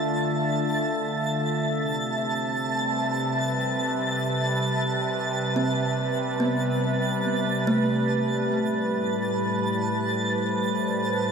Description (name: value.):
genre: ambient.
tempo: 71 BPM.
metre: 4/4.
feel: straight.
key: unclear.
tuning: A4 = 440 Hz.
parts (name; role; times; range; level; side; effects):
warbly tape-like pad; sustained chords; 0.0-11.3 s; A2 to E5; -25 LUFS; equal; chorus, built-in reverb.
kalimba; arpeggios; 0.0-10.0 s; A3 to E5; -30 LUFS; equal; diffuse ambient delay.
twinkling granular texture; texture; 0.0-11.3 s; A5 to A6; -29 LUFS; right 2 dB; built-in reverb.
room: wet huge ambient reverb, RT60 8.3 s.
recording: none.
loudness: -23 LUFS.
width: side -6 dB against mid.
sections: 0.0-8.5 A section; 8.5-11.3 B section.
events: fade-in on kalimba 0.0-8.5.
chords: 0.0 Dmadd9; 1.8 Am9/C; 8.5 Am9.